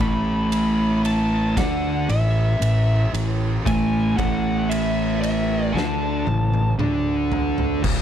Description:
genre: stoner and doom metal.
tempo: 57 BPM.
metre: 4/4.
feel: straight.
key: unclear.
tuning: A4 = 438 Hz.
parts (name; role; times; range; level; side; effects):
fuzz lead guitar; melody; 0.0-6.7 s; E5 to B5; -27 LUFS; equal; distortion, slapback echo.
thick fuzz guitar; riff; 0.0-8.0 s; C#2 to D4; -21 LUFS; equal; distortion.
fuzz fingered electric bass; bass; 0.0-8.0 s; C#1 to D2; -26 LUFS; equal; overdrive.
oversized low-tuned drum kit; drums; 0.0-8.0 s; crash cymbal, kick drum, ride cymbal, snare drum, toms; -28 LUFS; equal; none.
room: little or no reverb.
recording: none.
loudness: -18 LUFS.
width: side -9 dB against mid.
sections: 0.0-7.8 A section.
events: drum fill 5.7-7.8.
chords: 0.0 A5.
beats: 0.52 1.56 2.61 | 3.65 4.70 5.75 6.79 | 7.83.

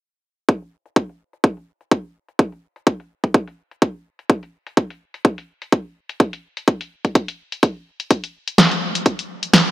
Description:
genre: bass house.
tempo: 126 BPM.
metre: 4/4.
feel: swing 55% on 16ths.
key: none.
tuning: none.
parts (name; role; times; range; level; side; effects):
electronic kick drum; drums; 0.5-9.6 s; none; -16 LUFS; equal; high-pass filter on kick.
house drum kit; drums; 0.5-9.6 s; hi-hat, snare drum; -16 LUFS; equal; low-pass filter on hats, low-pass filter on snare.
room: light reverb.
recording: none.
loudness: -19 LUFS.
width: side -15 dB against mid.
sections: 0.5-9.7 A section.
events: filter sweep on drum 0.5-9.7.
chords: none.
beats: | 0.49 0.96 1.44 1.92 | 2.39 2.87 3.34 3.82 | 4.30 4.77 5.25 5.72 | 6.20 6.68 7.15 7.63 | 8.11 8.58 9.06 9.53.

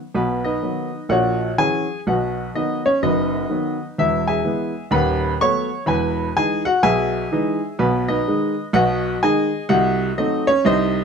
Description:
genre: jazz, stride piano.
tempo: 126 BPM.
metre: 4/4.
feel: swing 62% on 8ths.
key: B major.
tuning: A4 = 436 Hz.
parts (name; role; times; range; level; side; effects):
warm grand piano; solo; 0.1-11.0 s; D#1 to C#6; -18 LUFS; equal; none.
room: moderate club reverb, RT60 0.5 s.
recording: none.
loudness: -18 LUFS.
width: side -6 dB against mid.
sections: 0.1-11.0 A section.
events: none.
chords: 0.1 B; 1.1 F#7/A#; 2.1 B; 4.0 E; 4.9 B7/D#; 5.9 Emaj7; 7.8 G#m/B; 9.7 Cdim7.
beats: | 0.14 0.62 1.10 1.58 | 2.06 2.53 3.01 3.49 | 3.97 4.45 4.92 5.40 | 5.88 6.36 6.83 7.31 | 7.79 8.26 8.74 9.22 | 9.69 10.17 10.65.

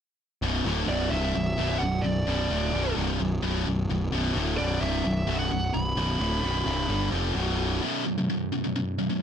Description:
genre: metal.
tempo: 130 BPM.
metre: 4/4.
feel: straight.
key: unclear.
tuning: A4 = 443 Hz.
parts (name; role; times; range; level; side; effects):
high-gain distorted guitar; riff; 0.4-9.2 s; B1 to G3; -27 LUFS; equal; distortion.
fuzz picked electric bass; bass; 0.4-7.8 s; B0 to G1; -28 LUFS; equal; overdrive.
high-gain lead guitar; melody; 0.9-7.1 s; D5 to B5; -31 LUFS; right 2 dB; distortion.
room: little or no reverb.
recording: none.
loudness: -24 LUFS.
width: side -8 dB against mid.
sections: 0.4-7.8 A section; 7.8-9.2 B section.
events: none.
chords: 0.4 Bm; 7.8 B5.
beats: | 0.42 0.89 1.35 1.81 | 2.28 2.74 3.20 3.67 | 4.13 4.59 5.05 5.52 | 5.98 6.44 6.90 7.36 | 7.83 8.29 8.75 9.21.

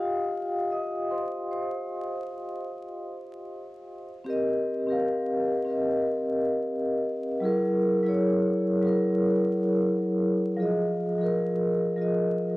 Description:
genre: hip hop.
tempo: 76 BPM.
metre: 4/4.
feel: swing 58% on 16ths.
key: C minor.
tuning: A4 = 443 Hz.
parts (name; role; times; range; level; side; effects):
vibraphone with soft mallets; solo; 0.0-12.6 s; F3 to Eb6; -25 LUFS; equal; cassette tape.
room: moderate studio reverb, RT60 0.6 s.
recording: home recording on cassette, vinyl crackle.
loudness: -24 LUFS.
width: side -19 dB against mid.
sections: 0.0-4.3 A section; 4.3-12.6 A section.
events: vibraphone solo 0.0-4.3.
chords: 0.0 Cm; 4.3 Cm7; 7.4 F#9; 10.6 Fm7.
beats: 0.31 | 1.10 1.89 2.68 3.47 | 4.26 5.05 5.84 6.63 | 7.42 8.21 8.99 9.79 | 10.57 11.36 12.15.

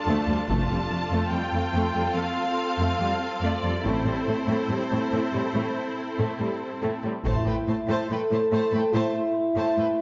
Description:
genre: cinematic, epic orchestral film score.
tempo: 71 BPM.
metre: 4/4.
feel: straight.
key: A minor.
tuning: A4 = 442 Hz.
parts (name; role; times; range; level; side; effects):
rich studio violin section; melody; 0.0-9.9 s; C5 to A5; -35 LUFS; equal; none.
warm symphonic violin section; second line; 0.0-9.9 s; E4 to C5; -34 LUFS; equal; none.
clear symphonic viola section; accompaniment; 0.0-9.9 s; G3 to D4; -32 LUFS; equal; none.
rich symphonic cello section; bass; 0.1-9.8 s; D2 to A2; -31 LUFS; equal; none.
clear symphonic double bass section; bass; 0.5-7.5 s; F1 to A1; -34 LUFS; equal; none.
taiko ensemble; drums; 0.5-2.1, 7.3-8.9 s; none; -34 LUFS; equal; none.
dark French horn section; sustained chords; 7.3-10.0 s; E4 to A4; -27 LUFS; equal; none.
room: wet scoring stage reverb, RT60 1.6 s.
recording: nothing above 7.6 kHz.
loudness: -26 LUFS.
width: mono.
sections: 0.0-7.3 A section; 7.3-10.0 A section.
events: none.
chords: 0.5 F; 3.9 Am.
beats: | 0.49 1.32 2.16 3.00 | 3.85 4.70 5.56 6.41 | 7.26 8.11 8.95 9.78.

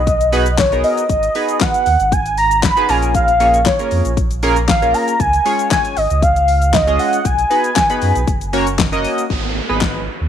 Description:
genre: dance-pop.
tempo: 117 BPM.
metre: 4/4.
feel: straight.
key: G# dorian.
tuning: A4 = 440 Hz.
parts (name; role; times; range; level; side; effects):
warm velvety synth lead; melody; 0.0-8.8 s; C#5 to B5; -15 LUFS; equal; chorus, slapback echo.
sub bass with octave; bass; 0.0-10.3 s; F#1 to F#2; -19 LUFS; equal; sidechain pumping.
pop drum kit; drums; 0.1-9.9 s; handclaps, hi-hat, kick drum, shaker, snare drum; -19 LUFS; left 3 dB; none.
chorused retro synth keys; accompaniment; 0.3-10.0 s; G#3 to D#5; -20 LUFS; right 1 dB; sidechain pumping.
downlifter; sound effects; 9.3-10.3 s; none; -23 LUFS; right 3 dB; none.
room: light reverb.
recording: 1960s-style stereo.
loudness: -13 LUFS.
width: side -9 dB against mid.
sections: 0.0-9.3 A section.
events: none.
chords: 0.0 B6; 1.1 G#m7; 2.9 A#m7; 5.2 C#; 7.2 B6; 8.3 F#; 9.3 G#m.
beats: 0.07 0.58 | 1.09 1.61 2.12 2.63 | 3.15 3.66 4.17 4.68 | 5.20 5.71 6.22 6.74 | 7.25 7.76 8.28 8.79 | 9.30 9.81.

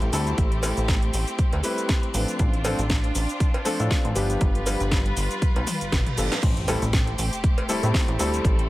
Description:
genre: nu-disco, nu disco.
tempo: 119 BPM.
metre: 4/4.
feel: swing 56% on 16ths.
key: A minor.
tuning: A4 = 439 Hz.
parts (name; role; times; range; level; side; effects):
warm concert grand piano; accompaniment; 0.0-8.7 s; F3 to B4; -28 LUFS; left 1 dB; vintage 12-bit sampler grit, sidechain pumping, digital delay.
rich studio string section; sustained chords; 0.0-8.7 s; G3 to B4; -32 LUFS; equal; sidechain pumping.
chorused synth bass; bass; 0.0-8.7 s; G1 to A2; -26 LUFS; equal; none.
house drum kit; drums; 0.0-8.7 s; cabasa, crash cymbal, hi-hat, snare drum, toms; -30 LUFS; equal; none.
electronic kick drum; drums; 0.4-8.6 s; none; -22 LUFS; equal; none.
cowbell; percussion; 0.6-7.7 s; none; -32 LUFS; equal; none.
reverse cymbal and sub drop; sound effects; 5.8-8.4 s; none; -36 LUFS; right 1 dB; none.
room: little or no reverb.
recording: none.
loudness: -21 LUFS.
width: side -17 dB against mid.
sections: 0.0-6.4 A section; 6.4-8.7 B section.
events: drum fill 5.7-6.4; reverse cymbal 5.8-6.4; drop 6.4-8.7; impact 6.4-8.4.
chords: 0.0 Am7; 2.1 Dm7/A; 4.2 G7; 6.4 Am7.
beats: | 0.38 0.88 1.39 1.89 | 2.40 2.90 3.40 3.91 | 4.41 4.92 5.42 5.93 | 6.43 6.93 7.44 7.94 | 8.45.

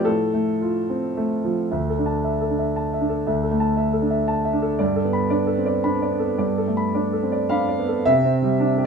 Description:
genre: neoclassical minimalist piano.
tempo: 105-119 BPM.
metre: 3/4.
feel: rubato.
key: D dorian.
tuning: A4 = 440 Hz.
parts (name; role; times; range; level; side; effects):
warm concert grand piano; solo; 0.0-8.9 s; D2 to B5; -19 LUFS; right 1 dB; none.
room: light reverb.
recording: minimal, uncompressed stereo recording.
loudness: -19 LUFS.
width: side -6 dB against mid.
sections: 0.0-1.7 A section; 1.7-8.1 B section.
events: none.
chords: 0.0 F/A; 1.7 Dsus2; 4.8 Gadd9; 8.1 Cadd9.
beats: | 0.05 0.61 1.16 | 1.71 2.24 2.75 | 3.27 3.78 4.28 | 4.79 5.31 5.84 | 6.40 6.96 7.52 | 8.08 8.62.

